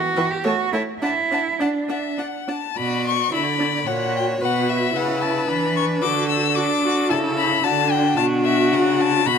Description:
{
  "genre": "quick classical-period movement for string quartet",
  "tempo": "102-113 BPM",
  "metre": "3/4",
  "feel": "rubato",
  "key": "B minor",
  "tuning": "A4 = 439 Hz",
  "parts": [
    { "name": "clear cello", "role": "bass", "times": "0.0-9.4 s", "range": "A#2 to G4", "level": "-23 LUFS", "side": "right 4 dB", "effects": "none" },
    { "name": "rich violin", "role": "melody", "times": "0.2-9.4 s", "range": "E5 to E6", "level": "-23 LUFS", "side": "left 10 dB", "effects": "none" },
    { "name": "clear violin", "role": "second line", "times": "0.2-9.4 s", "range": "D4 to F#5", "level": "-26 LUFS", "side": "left 4 dB", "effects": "none" },
    { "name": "rich viola", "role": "accompaniment", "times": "0.2-9.4 s", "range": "E3 to F#4", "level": "-24 LUFS", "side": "right 1 dB", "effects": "none" }
  ],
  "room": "moderate concert hall reverb, RT60 2.4 s",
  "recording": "none",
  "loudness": "-18 LUFS",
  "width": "side -6 dB against mid",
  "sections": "0.0-2.8 A section; 2.8-9.4 B section",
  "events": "none",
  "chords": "0.4 A5; 1.0 D; 2.8 Bm; 3.9 F#/A#; 4.4 Bm; 6.0 D; 7.1 A/C#; 7.6 D"
}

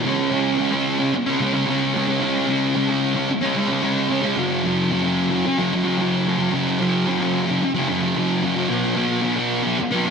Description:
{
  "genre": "rock",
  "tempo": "111 BPM",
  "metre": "4/4",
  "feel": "straight",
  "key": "unclear",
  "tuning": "A4 = 440 Hz",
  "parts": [
    { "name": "thick fuzz guitar", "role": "solo", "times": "0.0-10.1 s", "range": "F#2 to C#4", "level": "-18 LUFS", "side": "equal", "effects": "distortion, lush chorus, ping-pong delay" }
  ],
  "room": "wet lush hall reverb, RT60 1.9 s, digital ambience",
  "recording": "dreamy mix soaked in reverb",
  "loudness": "-18 LUFS",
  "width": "side -6 dB against mid",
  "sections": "0.0-8.7 A section; 8.7-10.1 B section",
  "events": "none",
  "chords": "0.0 C#5; 4.4 F#5; 8.7 B5"
}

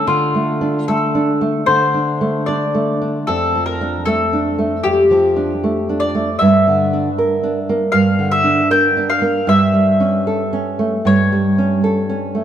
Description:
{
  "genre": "romantic duo for mandolin and classical guitar",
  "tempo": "76 BPM",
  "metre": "4/4",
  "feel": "rubato",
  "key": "D minor",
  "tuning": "A4 = 440 Hz",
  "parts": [
    { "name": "mandolin", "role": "melody", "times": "0.0-11.8 s", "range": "F4 to G5", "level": "-17 LUFS", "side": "left 2 dB", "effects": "slapback echo" },
    { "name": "nylon-string guitar", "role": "accompaniment", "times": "0.0-12.4 s", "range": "F2 to Bb4", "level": "-16 LUFS", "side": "right 2 dB", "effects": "none" }
  ],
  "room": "wet plate reverb, RT60 3.4 s",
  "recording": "heard from further back in the room",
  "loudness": "-14 LUFS",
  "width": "side -10 dB against mid",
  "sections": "0.0-12.4 A section",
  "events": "none",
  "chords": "0.1 Dm; 3.3 Dm/F; 6.4 Em7b5/G; 9.5 A7/G"
}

